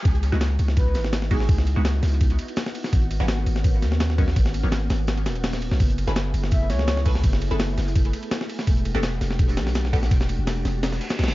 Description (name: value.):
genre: drum and bass, jungle.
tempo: 167 BPM.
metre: 4/4.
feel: straight.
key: C# minor.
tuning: A4 = 440 Hz.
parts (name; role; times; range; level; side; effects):
riser and reverse cymbal; sound effects; 0.0-0.1, 10.9-11.3 s; none; -35 LUFS; equal; none.
soft string machine; sustained chords; 0.1-11.3 s; A3 to G#4; -33 LUFS; equal; ensemble chorus.
long sustained 808-style bass; bass; 0.1-11.3 s; D1 to D#2; -23 LUFS; equal; high-pass filter.
breakbeat sampler-style drum kit; drums; 0.1-11.3 s; kick drum, ride cymbal, snare drum; -23 LUFS; equal; none.
crunchy breakbeat drum kit; drums; 0.1-11.3 s; hi-hat, snare drum, tambourine; -42 LUFS; right 2 dB; high-pass filter on hats, high-pass filter on snare, high-pass filter on perc, high-pass filter on room.
filtered dub chord stab; stabs; 0.3-10.0 s; D#3 to B4; -32 LUFS; equal; phaser, wide subtle chorus, dub echo.
breathy flute-like synth lead; melody; 0.8-1.6, 6.5-7.0 s; G#4 to E5; -32 LUFS; equal; wide subtle chorus, cassette tape, dub echo.
room: studio reverb.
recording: dark, warm production, vinyl crackle, high-pass filter, nothing above 7.5 kHz.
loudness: -20 LUFS.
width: side -18 dB against mid.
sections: 0.1-11.3 A section.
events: drop 0.1-11.3; kick drops out 10.8-11.3; reverse cymbal 10.9-11.3.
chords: 0.1 C#m11; 2.9 G#m11; 5.8 F#m11; 8.7 Em11.